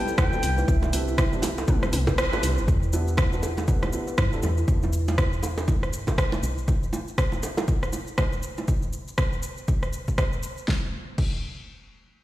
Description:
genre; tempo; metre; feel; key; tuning
afro house; 120 BPM; 4/4; swing 60% on 16ths; E minor; A4 = 440 Hz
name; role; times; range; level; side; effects
silver concert flute; melody; 0.0-1.7 s; E5 to G5; -32 LUFS; left 1 dB; dub echo
dark analog pad; sustained chords; 0.0-2.6 s; G3 to B4; -38 LUFS; equal; chorus, phaser, sidechain pumping
kalimba; arpeggios; 0.0-4.7 s; B3 to E5; -34 LUFS; right 1 dB; sidechain pumping, dub echo
felt-muted upright piano; stabs; 0.0-4.4 s; B3 to B4; -34 LUFS; right 2 dB; sidechain pumping, low-pass filter, dub echo
woody FM bass; bass; 0.0-6.6 s; G1 to G2; -26 LUFS; equal; sidechain pumping
deep house drum kit; drums; 0.1-11.3 s; crash cymbal, hi-hat, rim click, shaker, snare drum, toms; -30 LUFS; equal; overdrive, small room reverb
electronic kick drum; drums; 0.2-11.3 s; none; -25 LUFS; equal; overdrive, small room reverb
bongos; percussion; 0.2-8.7 s; none; -32 LUFS; right 2 dB; none
room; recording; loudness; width
light reverb, studio ambience; played on a big sound system in a bare room, large studio reverb; -22 LUFS; side -15 dB against mid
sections
0.0-2.7 A section; 2.7-10.7 B section; 10.7-12.2 C section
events
drop 0.0-2.7; kick drops out 2.2-2.7; band accent 2.2; filter sweep on felt piano 2.7-4.7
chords
0.0 Cmaj7; 2.7 Em7; 6.7 N.C.

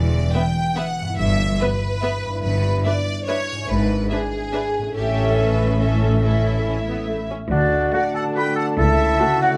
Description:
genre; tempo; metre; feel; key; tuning
cinematic, playful, whimsical film cue; 143 BPM; 3/4; straight; D major; A4 = 441 Hz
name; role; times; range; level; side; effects
rich studio violin section; second line; 0.0-9.6 s; E4 to G5; -29 LUFS; equal; none
concert harp; arpeggios; 0.0-9.6 s; G2 to D5; -30 LUFS; equal; none
clear chamber cello section; bass; 0.0-9.1 s; C#2 to A2; -27 LUFS; equal; none
rich studio double bass section; bass; 0.0-9.1 s; E1 to D2; -26 LUFS; equal; none
rich studio violin section; melody; 0.3-9.5 s; F#4 to E5; -31 LUFS; equal; none
rich studio viola section; accompaniment; 0.3-9.5 s; A3 to B4; -29 LUFS; equal; none
flute section; second line; 7.5-9.5 s; D5 to B5; -24 LUFS; equal; none
warm oboe; second line; 7.5-9.5 s; D4 to B4; -26 LUFS; equal; none
clear bassoon; accompaniment; 7.5-9.6 s; D4 to F#4; -27 LUFS; equal; none
mellow French horn section; sustained chords; 7.5-9.6 s; A3 to F#4; -29 LUFS; equal; none
room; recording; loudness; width
light reverb; close, detailed microphones, lossy compression artefacts; -20 LUFS; mono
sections
0.0-7.5 A section; 7.5-9.6 B section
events
none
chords
0.0 Em7; 1.2 Em/G; 2.4 Em7/G; 3.7 E7/G#; 5.0 A7; 6.2 A; 7.5 D; 8.8 A/C#

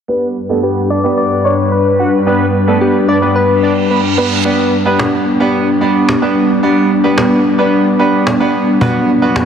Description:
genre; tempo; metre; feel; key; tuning
dance-pop; 110 BPM; 4/4; straight; unclear; A4 = 436 Hz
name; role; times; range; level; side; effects
fat analog lead; melody; 0.1-4.3 s; A4 to F#5; -20 LUFS; right 2 dB; chorus, phaser, low-pass filter, tape echo
clear concert grand piano; accompaniment; 0.1-9.5 s; B3 to D5; -16 LUFS; right 3 dB; lush chorus, low-pass filter
airy breathy pad; sustained chords; 0.3-9.5 s; G2 to B4; -13 LUFS; left 1 dB; chorus, low-pass filter
soft struck synth lead; melody; 0.6-4.2 s; G4 to D5; -19 LUFS; left 4 dB; chorus, low-pass filter, tape echo
reverse cymbal; sound effects; 3.6-4.4 s; none; -24 LUFS; right 5 dB; none
cajon; drums; 5.0-9.5 s; none; -20 LUFS; equal; none
room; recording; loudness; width
wet cathedral reverb, RT60 6.5 s; dreamy mix soaked in reverb; -10 LUFS; side -7 dB against mid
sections
0.1-4.4 A section; 4.4-9.5 B section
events
filter sweep 0.1-4.4; reverse cymbal 3.6-4.4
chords
0.1 G; 8.8 Bm

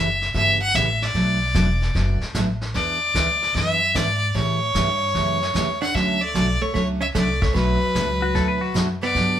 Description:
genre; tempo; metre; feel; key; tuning
country, western swing; 150 BPM; 4/4; swing 67% on 8ths; D major; A4 = 440 Hz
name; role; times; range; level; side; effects
clear fiddle; melody; 0.0-9.4 s; B4 to F#5; -22 LUFS; left 1 dB; none
picked steel-string acoustic guitar; accompaniment; 0.0-9.4 s; B2 to G#4; -25 LUFS; right 2 dB; none
upright bass; bass; 0.0-9.4 s; E1 to A2; -25 LUFS; equal; none
vintage brush drum kit; drums; 0.2-9.4 s; brushed snare drum, hi-hat, kick drum, snare drum; -29 LUFS; equal; none
hollow-body jazz guitar; second line; 5.8-9.4 s; F#3 to D4; -27 LUFS; right 3 dB; none
clean lap steel guitar; second line; 8.2-8.9 s; F#4 to B4; -25 LUFS; left 6 dB; none
room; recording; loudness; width
moderate studio ambience, RT60 0.5 s; band playing live in one room; -18 LUFS; side -10 dB against mid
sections
0.0-5.9 A section; 5.9-9.4 B section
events
none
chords
0.0 A7; 1.1 Bm7; 2.7 E7; 4.3 A7; 5.9 Dmaj7; 7.5 Bm7

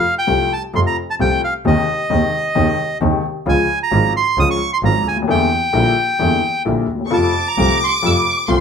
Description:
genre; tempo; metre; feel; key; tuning
tango; 131 BPM; 4/4; rubato; unclear; A4 = 440 Hz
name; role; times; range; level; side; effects
bandoneon; melody; 0.0-8.4 s; Eb5 to E6; -18 LUFS; right 2 dB; none
warm upright piano; accompaniment; 0.3-8.6 s; Ab1 to F4; -19 LUFS; left 4 dB; none
dark double bass; bass; 0.3-8.6 s; Ab1 to F2; -20 LUFS; right 2 dB; none
warm studio violin section; second line; 7.1-8.6 s; C6 to D6; -18 LUFS; left 1 dB; none
room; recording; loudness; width
moderate club reverb, RT60 0.8 s; minimal, uncompressed stereo recording; -14 LUFS; side -7 dB against mid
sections
0.0-8.6 A section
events
none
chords
0.0 F; 1.6 Ab/Eb; 3.5 Db; 5.3 Em7b5; 7.1 F

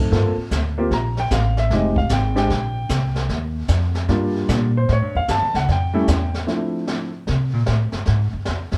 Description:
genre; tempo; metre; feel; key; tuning
jazz piano trio; 151 BPM; 4/4; swing 65% on 8ths; D minor; A4 = 442 Hz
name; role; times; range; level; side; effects
warm concert grand piano; melody; 0.0-7.1 s; F3 to Bb5; -24 LUFS; equal; none
upright bass; bass; 0.0-8.8 s; F1 to C3; -22 LUFS; equal; none
jazz brush drum kit; drums; 0.1-8.8 s; brushed snare drum, hi-hat, kick drum, snare drum; -28 LUFS; equal; none
room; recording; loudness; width
light reverb; dark, warm production; -20 LUFS; mono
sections
0.0-6.5 A section; 6.5-8.8 A section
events
grand piano solo 0.0-6.5; upright bass solo 6.5-8.8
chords
0.1 Gm11; 1.7 Fm7; 2.5 Bbsus2; 3.3 Ebmaj9; 4.9 A7; 6.5 Dm9; 8.1 C#(#11) (rootless)

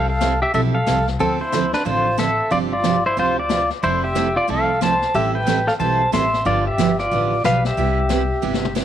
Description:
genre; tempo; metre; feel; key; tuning
country, western swing; 182 BPM; 4/4; swing 62% on 8ths; unclear; A4 = 439 Hz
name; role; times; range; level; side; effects
pedal steel guitar; melody; 0.0-8.8 s; C4 to C6; -19 LUFS; equal; none
picked steel-string acoustic guitar; accompaniment; 0.0-8.8 s; C3 to A4; -24 LUFS; right 9 dB; none
upright bass; bass; 0.0-8.8 s; F1 to D2; -24 LUFS; left 2 dB; none
vintage brush drum kit; drums; 0.2-8.8 s; brushed snare drum, hi-hat, snare drum, toms; -27 LUFS; left 8 dB; none
room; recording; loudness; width
light reverb, small room ambience; 1960s-style stereo with parts hard left and right; -16 LUFS; side -10 dB against mid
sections
0.0-8.8 A section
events
drum fill 8.4-8.8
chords
0.0 Fmaj7/C; 1.2 Dm7; 2.5 G7sus4; 3.8 Fmaj7; 5.1 Am7; 6.5 G7; 7.8 Cmaj7

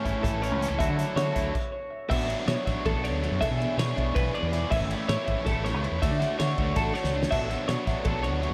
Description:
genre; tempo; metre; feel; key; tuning
math rock and midwest emo; 323 BPM (eighths); 7/8; straight; unclear; A4 = 440 Hz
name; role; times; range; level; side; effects
twangy electric guitar; accompaniment; 0.0-2.9 s; A2 to F#4; -37 LUFS; equal; none
twelve-string electric guitar; arpeggios; 0.0-8.5 s; A4 to E5; -32 LUFS; equal; analog chorus, analog delay
biting overdriven guitar; riff; 0.0-8.5 s; A2 to A4; -34 LUFS; equal; none
growling fingered electric bass; bass; 0.1-8.5 s; G#1 to D3; -32 LUFS; equal; overdrive
loose indie drum kit; drums; 0.1-8.5 s; crash cymbal, hi-hat, kick drum, ride cymbal, snare drum; -34 LUFS; equal; none
room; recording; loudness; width
moderate plate reverb, RT60 2.1 s; dreamy mix soaked in reverb; -27 LUFS; mono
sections
0.0-2.1 A section; 2.1-8.5 B section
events
stop 1.5-2.1; drum fill 7.0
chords
0.0 Amaj7; 0.8 Dmaj9; 2.1 Bm11; 3.4 E6/B; 4.7 Amaj7; 6.0 Dmaj9; 7.3 Bm11

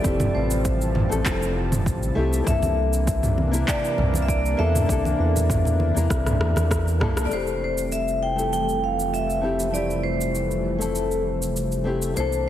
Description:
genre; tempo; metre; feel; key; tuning
sunset chillout; 99 BPM; 4/4; straight; F major; A4 = 440 Hz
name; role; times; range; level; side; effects
vibraphone with medium hard mallets; melody; 0.0-12.4 s; C5 to G5; -27 LUFS; moving between left 7 dB and right 3 dB; auto-pan, digital delay
nylon-string guitar; accompaniment; 0.0-12.5 s; A3 to Bb4; -29 LUFS; left 2 dB; auto-pan, low-pass filter, tape echo
lush unison pad; sustained chords; 0.0-12.5 s; C3 to A5; -29 LUFS; equal; chorus
round analog bass; bass; 0.0-12.5 s; F1 to E2; -25 LUFS; equal; none
deep house drum kit; drums; 0.0-12.4 s; cabasa, handclaps, rim click, toms; -28 LUFS; right 1 dB; overdrive
electronic kick drum; drums; 0.0-6.8 s; none; -26 LUFS; equal; overdrive
congas; percussion; 0.2-7.1 s; none; -30 LUFS; right 2 dB; none
room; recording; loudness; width
moderate lush hall reverb, RT60 2.1 s; heavily compressed radio sound, multiband compression; -20 LUFS; side -11 dB against mid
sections
0.0-7.3 A section; 7.3-12.5 B section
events
drum fill 6.1-7.3; band accent 7.2-7.5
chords
0.0 Fmaj9; 2.5 C13; 7.3 Fmaj9

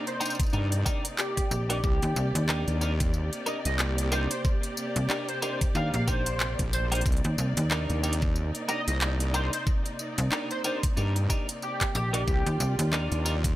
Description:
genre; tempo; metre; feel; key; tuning
glitch hop; 92 BPM; 4/4; swing 58% on 16ths; C minor; A4 = 441 Hz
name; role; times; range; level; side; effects
dark studio string section; sustained chords; 0.0-13.6 s; C3 to D5; -35 LUFS; equal; sidechain pumping
twelve-string electric guitar; stabs; 0.0-13.4 s; D4 to Bb4; -34 LUFS; equal; sidechain pumping, digital delay
sync lead; melody; 0.1-13.0 s; G4 to F5; -34 LUFS; equal; ensemble chorus, cassette tape, digital delay
pop drum kit; drums; 0.1-13.6 s; handclaps, hi-hat, rim click, tambourine; -32 LUFS; equal; studio reverb
electronic kick drum; drums; 0.4-13.6 s; none; -28 LUFS; equal; studio reverb
wobble bass; bass; 0.5-13.6 s; Bb1 to G2; -27 LUFS; equal; chorus, tube saturation
slap-like FM bass; bass; 1.5-13.1 s; Bb1 to Eb2; -27 LUFS; equal; tube saturation
room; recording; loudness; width
little or no reverb; none; -25 LUFS; side -15 dB against mid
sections
0.0-13.6 A section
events
none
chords
0.0 Cm9

